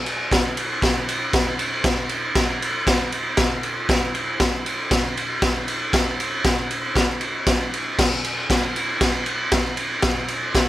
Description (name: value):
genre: rock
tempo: 117 BPM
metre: 4/4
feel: straight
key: none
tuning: none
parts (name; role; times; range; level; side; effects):
- raw garage drum kit; drums; 0.1-10.7 s; crash cymbal, kick drum, ride cymbal, snare drum; -19 LUFS; equal; none
room: little or no reverb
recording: none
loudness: -19 LUFS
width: side -14 dB against mid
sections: 0.0-8.0 A section; 8.0-10.7 A section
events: none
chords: none